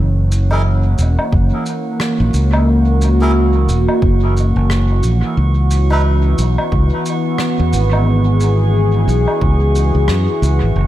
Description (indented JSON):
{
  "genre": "ambient dub",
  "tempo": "89 BPM",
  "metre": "4/4",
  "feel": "swing 59% on 16ths",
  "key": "unclear",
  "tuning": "A4 = 436 Hz",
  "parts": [
    { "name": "warm analog pad", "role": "sustained chords", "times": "0.0-10.9 s", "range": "E3 to C#5", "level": "-18 LUFS", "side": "left 1 dB", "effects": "chorus" },
    { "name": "fingered electric bass", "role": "bass", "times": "0.0-10.9 s", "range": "E1 to F#2", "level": "-13 LUFS", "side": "equal", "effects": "none" },
    { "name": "drifting glass-harmonics texture", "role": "texture", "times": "0.4-10.9 s", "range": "F#4", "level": "-26 LUFS", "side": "right 6 dB", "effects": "chorus, built-in reverb" },
    { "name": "shaker, woodblock and rim click", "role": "drums", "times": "0.3-10.6 s", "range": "none", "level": "-26 LUFS", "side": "left 1 dB", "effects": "dub echo" },
    { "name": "melodica", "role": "stabs", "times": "0.5-6.0 s", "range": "D#4 to B4", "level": "-25 LUFS", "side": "equal", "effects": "dub echo" },
    { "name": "electronic kick drum", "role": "drums", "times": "1.3-9.6 s", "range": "none", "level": "-17 LUFS", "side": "equal", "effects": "none" }
  ],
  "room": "moderate plate reverb, RT60 1.7 s, small room ambience",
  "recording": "dreamy mix soaked in reverb",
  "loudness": "-12 LUFS",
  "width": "side -13 dB against mid",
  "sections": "0.0-10.9 A section",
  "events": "none",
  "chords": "0.0 F#7; 5.4 C#m7"
}